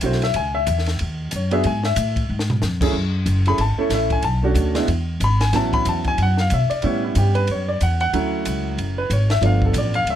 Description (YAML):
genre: jazz piano trio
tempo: 185 BPM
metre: 4/4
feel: swing 61% on 8ths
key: F# minor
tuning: A4 = 444 Hz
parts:
  - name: warm upright piano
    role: melody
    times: 0.0-10.2 s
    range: F#2 to B5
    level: -21 LUFS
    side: equal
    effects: none
  - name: upright bass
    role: bass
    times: 0.0-10.2 s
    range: F#1 to B2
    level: -20 LUFS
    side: equal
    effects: none
  - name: compact cocktail drum kit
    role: drums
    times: 0.0-10.2 s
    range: crash cymbal, hi-hat, kick drum, ride cymbal, snare drum, toms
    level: -28 LUFS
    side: left 1 dB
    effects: none
room: little or no reverb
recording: close, detailed microphones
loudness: -18 LUFS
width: side -10 dB against mid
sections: 0.0-2.9 A section; 2.9-10.2 A section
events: upright piano solo 0.0-10.2; drum fill 2.3-2.6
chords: 0.3 C#madd9; 1.6 Eadd11/G#; 2.3 C# (rootless); 2.9 F#m9; 4.2 Bm9; 4.9 E; 5.5 A69; 6.8 A7; 8.1 Dmaj9; 9.4 G9